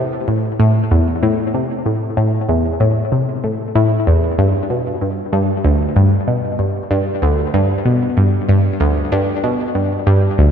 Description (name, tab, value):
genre	ambient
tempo	95 BPM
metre	4/4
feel	straight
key	unclear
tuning	A4 = 440 Hz
part	analog pluck	solo	0.0-10.5 s	D2 to C3	-14 LUFS	equal	chorus, phaser, ping-pong delay
room	wet lush hall reverb, RT60 3.1 s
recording	dreamy mix soaked in reverb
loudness	-14 LUFS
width	side -8 dB against mid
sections	0.0-10.5 A section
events	none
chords	none